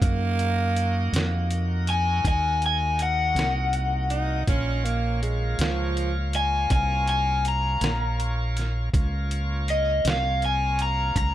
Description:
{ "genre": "slow blues", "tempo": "54 BPM (dotted quarters)", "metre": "12/8", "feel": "straight", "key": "Bb minor", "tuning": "A4 = 440 Hz", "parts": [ { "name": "growling tenor saxophone", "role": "second line", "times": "0.0-6.1 s", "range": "F3 to Eb4", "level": "-30 LUFS", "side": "right 5 dB", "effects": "analog delay" }, { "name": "bright tonewheel organ", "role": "sustained chords", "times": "0.0-11.3 s", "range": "Bb3 to Db5", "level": "-34 LUFS", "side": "equal", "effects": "overdrive, slow rotary speaker" }, { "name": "fingered electric bass", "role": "bass", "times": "0.0-11.3 s", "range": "Bb1 to Gb2", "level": "-25 LUFS", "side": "equal", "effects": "none" }, { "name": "trip hop sampler-style drum kit", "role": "drums", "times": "0.0-11.3 s", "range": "hi-hat, kick drum, snare drum", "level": "-26 LUFS", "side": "equal", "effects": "none" }, { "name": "overdriven semi-hollow guitar", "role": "melody", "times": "1.9-11.3 s", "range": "Eb5 to Bb5", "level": "-24 LUFS", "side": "left 2 dB", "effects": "none" } ], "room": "light reverb", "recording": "none", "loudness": "-22 LUFS", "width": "side -12 dB against mid", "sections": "0.0-11.3 A section", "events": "none", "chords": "0.0 Ebm; 4.5 Bbm" }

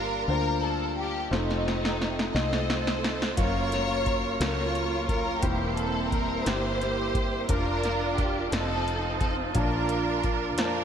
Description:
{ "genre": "slow gospel", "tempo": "58 BPM (dotted quarters)", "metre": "6/8", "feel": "straight", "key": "Bb major", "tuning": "A4 = 438 Hz", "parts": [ { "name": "warm studio string section", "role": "melody", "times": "0.0-10.8 s", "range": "A3 to Eb5", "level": "-29 LUFS", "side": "right 1 dB", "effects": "none" }, { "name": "clear baby grand piano", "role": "accompaniment", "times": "0.0-10.8 s", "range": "G2 to A5", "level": "-32 LUFS", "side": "left 2 dB", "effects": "lush chorus" }, { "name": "dark French horn section", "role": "sustained chords", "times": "0.0-10.8 s", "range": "F3 to G4", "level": "-40 LUFS", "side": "left 1 dB", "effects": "none" }, { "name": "fingered electric bass", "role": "bass", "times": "0.0-10.8 s", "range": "E1 to F2", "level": "-32 LUFS", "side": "equal", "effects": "none" }, { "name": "electro analog drum machine", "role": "drums", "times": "1.3-10.7 s", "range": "hi-hat, kick drum, snare drum", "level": "-30 LUFS", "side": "equal", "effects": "gated reverb" }, { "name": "mellow tonewheel organ", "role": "sustained chords", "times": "3.4-10.8 s", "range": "Bb3 to Eb6", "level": "-34 LUFS", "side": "right 1 dB", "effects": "slow rotary speaker" } ], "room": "moderate lush hall reverb, RT60 2.8 s", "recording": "bright 1980s-style digital production", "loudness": "-25 LUFS", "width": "side -8 dB against mid", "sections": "0.0-10.8 A section", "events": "drum fill 1.3-3.4", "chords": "0.0 Gm7; 1.3 F7; 3.4 Gbmaj7; 5.4 C7/E; 7.5 Bb/F; 8.5 F7; 9.5 Bbmaj7" }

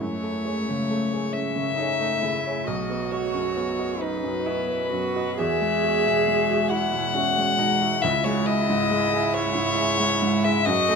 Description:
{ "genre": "neoclassical piano and strings", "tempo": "45 BPM (dotted quarters)", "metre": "6/8", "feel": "rubato", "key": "C# minor", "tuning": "A4 = 441 Hz", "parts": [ { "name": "dark violin", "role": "melody", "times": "0.0-11.0 s", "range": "B4 to F#5", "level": "-24 LUFS", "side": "left 6 dB", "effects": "none" }, { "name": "warm cello", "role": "second line", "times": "0.0-11.0 s", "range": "A3 to G#4", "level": "-28 LUFS", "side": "right 6 dB", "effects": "none" }, { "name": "clear baby grand piano", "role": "accompaniment", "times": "0.0-11.0 s", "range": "B1 to E5", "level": "-27 LUFS", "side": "right 1 dB", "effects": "none" }, { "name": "deep dark ambient pad", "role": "sustained chords", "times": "0.0-11.0 s", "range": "G#3 to F#5", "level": "-33 LUFS", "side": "right 1 dB", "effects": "chorus, built-in reverb" } ], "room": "light reverb", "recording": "minimal, uncompressed stereo recording", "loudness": "-21 LUFS", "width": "side -5 dB against mid", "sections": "0.0-11.0 A section", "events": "none", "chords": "0.0 F#madd9; 2.7 B; 5.4 Eadd9; 8.0 C#m" }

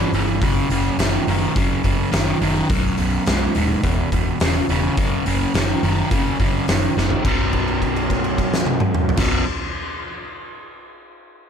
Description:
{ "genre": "blues rock power trio and southern rock", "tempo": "105 BPM", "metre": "4/4", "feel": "straight", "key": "unclear", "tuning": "A4 = 439 Hz", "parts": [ { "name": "crunchy overdriven guitar", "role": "riff", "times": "0.0-9.4 s", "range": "B1 to E3", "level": "-20 LUFS", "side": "equal", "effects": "none" }, { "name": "vintage muted picked electric bass", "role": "bass", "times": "0.0-9.4 s", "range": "B0 to G1", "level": "-24 LUFS", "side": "equal", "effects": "none" }, { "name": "oversized low-tuned drum kit", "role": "drums", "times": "0.1-9.3 s", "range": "crash cymbal, hi-hat, kick drum, snare drum, toms", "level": "-22 LUFS", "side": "equal", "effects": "none" } ], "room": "light reverb, small room ambience", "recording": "none", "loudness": "-17 LUFS", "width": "side -7 dB against mid", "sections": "0.0-7.2 A section; 7.2-9.5 B section", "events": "drum fill 7.0; held note 7.2-9.2", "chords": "0.4 F#5; 2.7 B5; 3.8 E5; 5.0 F#5; 7.2 B5" }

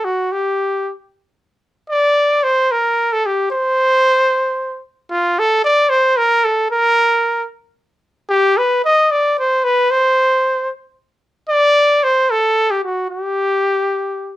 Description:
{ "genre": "mexican folk", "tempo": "75 BPM (dotted quarters)", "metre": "6/8", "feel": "straight", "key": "G minor", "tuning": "A4 = 440 Hz", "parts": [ { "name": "warm trumpet", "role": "solo", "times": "0.0-14.4 s", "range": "F4 to Eb5", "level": "-13 LUFS", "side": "equal", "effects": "none" } ], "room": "moderate small room reverb, RT60 0.5 s", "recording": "none", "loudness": "-13 LUFS", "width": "side -14 dB against mid", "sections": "0.0-1.9 A section; 1.9-14.4 A section", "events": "none", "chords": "none" }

